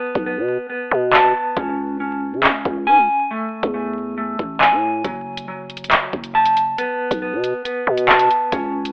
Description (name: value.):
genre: hip hop, drill.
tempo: 138 BPM.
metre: 4/4.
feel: half-time.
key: unclear.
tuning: A4 = 441 Hz.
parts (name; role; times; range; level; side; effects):
mellow electric guitar; arpeggios; 0.0-8.9 s; F#3 to A5; -18 LUFS; equal; tremolo, tape echo.
growling 808-style bass; bass; 0.2-8.9 s; F#1 to C#3; -22 LUFS; equal; none.
drill drum kit; drums; 0.2-8.9 s; handclaps, hi-hat, kick drum; -16 LUFS; equal; none.
room: light reverb, digital ambience.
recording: vinyl crackle, telephone sound.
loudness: -16 LUFS.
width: side -27 dB against mid.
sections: 0.0-8.9 A section.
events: break 0.0-5.0.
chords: 0.0 Asus2/B; 1.6 C#5; 3.3 A5; 5.0 F#m; 6.8 Asus2/B.